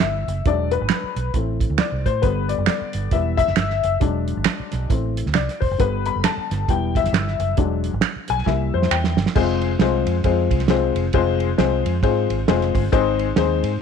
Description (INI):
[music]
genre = uptempo 1960s-style soul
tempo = 135 BPM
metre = 4/4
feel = swing 60% on 8ths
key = unclear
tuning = A4 = 440 Hz
[part]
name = dark upright piano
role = accompaniment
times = 0.0-13.7 s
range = D3 to B5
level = -22 LUFS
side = left 11 dB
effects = none
[part]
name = vintage muted fingered electric bass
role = bass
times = 0.0-13.8 s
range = E1 to A2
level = -23 LUFS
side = right 2 dB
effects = none
[part]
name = cloth-damped thuddy drum kit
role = drums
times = 0.0-13.7 s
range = crash cymbal, hi-hat, kick drum, ride cymbal, snare drum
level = -22 LUFS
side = right 5 dB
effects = none
[part]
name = finger snaps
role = percussion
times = 0.0-9.0 s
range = none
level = -26 LUFS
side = right 14 dB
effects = none
[sound]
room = light reverb, small room reverb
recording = 1960s-style stereo with parts hard left and right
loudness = -18 LUFS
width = side -6 dB against mid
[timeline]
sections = 0.0-9.4 A section; 9.4-13.8 B section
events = upright piano solo 0.0-9.4; drum fill 8.5-9.4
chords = 0.5 E7; 1.3 Am; 2.2 G; 3.1 Em; 4.0 E7; 4.9 Am; 5.8 G; 6.7 Em; 7.6 E7; 8.5 C7; 9.4 Fm; 12.9 Ab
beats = 0.01 | 0.46 0.90 1.35 1.79 | 2.24 2.68 3.13 3.58 | 4.02 4.46 4.91 5.36 | 5.80 6.25 6.69 7.14 | 7.58 8.03 8.47 8.92 | 9.36 9.81 10.25 10.70 | 11.14 11.59 12.03 12.48 | 12.92 13.37